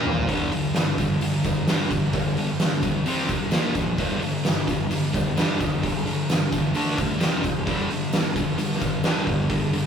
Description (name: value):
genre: garage rock duo or trio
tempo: 130 BPM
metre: 4/4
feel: straight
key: unclear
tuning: A4 = 440 Hz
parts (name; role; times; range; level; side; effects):
- thick fuzz guitar; riff; 0.0-9.9 s; F2 to D4; -24 LUFS; equal; distortion
- oversized low-tuned drum kit; drums; 0.1-9.8 s; hi-hat, kick drum, snare drum, toms; -24 LUFS; equal; none
- tambourine; percussion; 0.3-9.8 s; none; -44 LUFS; left 4 dB; none
room: light reverb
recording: rough rehearsal-room recording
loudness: -21 LUFS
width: side -7 dB against mid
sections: 0.3-9.9 A section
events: drum fill 0.0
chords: 0.3 G5; 3.1 C5; 3.5 Bb5; 4.0 G5; 6.8 D5; 7.2 F5; 7.7 G5